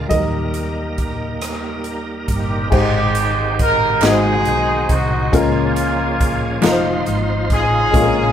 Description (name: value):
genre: slow gospel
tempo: 46 BPM (dotted quarters)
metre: 6/8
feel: straight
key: Ab major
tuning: A4 = 440 Hz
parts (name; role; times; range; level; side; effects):
- clear baby grand piano; melody; 0.0-1.8 s; Bb4 to Eb5; -26 LUFS; right 4 dB; none
- warm upright piano; accompaniment; 0.0-8.3 s; Ab2 to C5; -20 LUFS; left 4 dB; none
- bright tonewheel organ; sustained chords; 0.0-8.3 s; Eb3 to C5; -25 LUFS; right 2 dB; slow rotary speaker, chorus vibrato
- hollow-body short-scale fingered electric bass; bass; 0.0-8.3 s; F1 to Eb2; -23 LUFS; right 1 dB; none
- swinging big-band drum kit; drums; 0.1-8.1 s; crash cymbal, hi-hat, kick drum, rim click, snare drum; -22 LUFS; equal; none
- clear horn section; melody; 2.3-8.3 s; Ab3 to Bb4; -19 LUFS; right 1 dB; none
- group handclap; percussion; 4.0-7.0 s; none; -25 LUFS; right 5 dB; none
room: moderate studio reverb, RT60 0.5 s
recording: band playing live in one room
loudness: -15 LUFS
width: side -9 dB against mid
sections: 0.0-2.7 A section; 2.7-8.3 B section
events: none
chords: 0.1 Eb; 2.7 Abmaj7; 4.0 Ab7; 5.3 Db6; 6.6 F7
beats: | 0.11 1.42 | 2.72 4.03 | 5.33 6.63 | 7.94